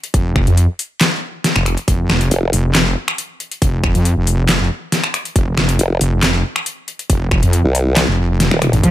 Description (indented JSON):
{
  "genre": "heavy wobble dubstep",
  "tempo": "138 BPM",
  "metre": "4/4",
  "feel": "half-time",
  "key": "unclear",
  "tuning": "A4 = 440 Hz",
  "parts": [
    { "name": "dubstep drum kit", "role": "drums", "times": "0.0-8.9 s", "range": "finger snaps, handclaps, hi-hat, snare drum, toms", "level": "-17 LUFS", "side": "left 1 dB", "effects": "overdrive" },
    { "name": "wobble bass", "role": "bass", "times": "0.1-8.9 s", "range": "F1 to F2", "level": "-15 LUFS", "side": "equal", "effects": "chorus, overdrive" },
    { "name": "electronic kick drum", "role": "drums", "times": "0.1-8.9 s", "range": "none", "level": "-17 LUFS", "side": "equal", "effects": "overdrive" },
    { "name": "formant-sweep wobble bass", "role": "bass", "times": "2.3-2.5, 5.8-8.7 s", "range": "Eb1 to C2", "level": "-15 LUFS", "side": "equal", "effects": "chorus, overdrive" },
    { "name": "dark cello", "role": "melody", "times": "8.8-8.9 s", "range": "F3", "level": "-11 LUFS", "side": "equal", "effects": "none" }
  ],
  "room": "little or no reverb",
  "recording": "none",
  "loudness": "-13 LUFS",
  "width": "side -14 dB against mid",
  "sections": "0.0-8.9 A section",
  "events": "drum fill 8.4-8.8",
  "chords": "0.0 F5"
}